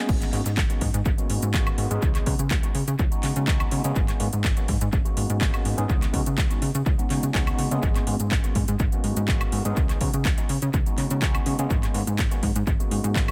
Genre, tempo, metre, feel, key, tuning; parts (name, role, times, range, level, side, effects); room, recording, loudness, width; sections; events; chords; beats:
filtered disco house; 124 BPM; 4/4; straight; G# minor; A4 = 439 Hz
overdriven tine electric piano; accompaniment; 0.0-13.3 s; G#3 to G#4; -34 LUFS; equal; fast tremolo, phaser, sidechain pumping, low-pass filter, analog delay
plucky analog bass; bass; 0.1-13.3 s; G#1 to C#3; -28 LUFS; equal; sidechain pumping, low-pass filter
electronic kick drum; drums; 0.1-13.3 s; -26 LUFS; equal; overdrive
house drum kit; drums; 0.1-13.3 s; crash cymbal, handclaps, hi-hat, shaker, woodblock; -34 LUFS; equal; overdrive, sidechain pumping on hats, sidechain pumping on cymbals, sidechain pumping on perc, analog delay
little or no reverb; echo-heavy mix; -24 LUFS; mono
0.1-13.3 A section
drop 0.1-13.3
0.1 G#m11; 2.0 C#9sus4; 4.0 G#m11; 5.9 C#9sus4; 7.8 G#m11; 9.8 C#9sus4; 11.7 G#m11
| 0.09 0.57 1.06 1.54 | 2.02 2.51 2.99 3.48 | 3.96 4.44 4.93 5.41 | 5.89 6.38 6.86 7.35 | 7.83 8.31 8.80 9.28 | 9.77 10.25 10.73 11.22 | 11.70 12.19 12.67 13.15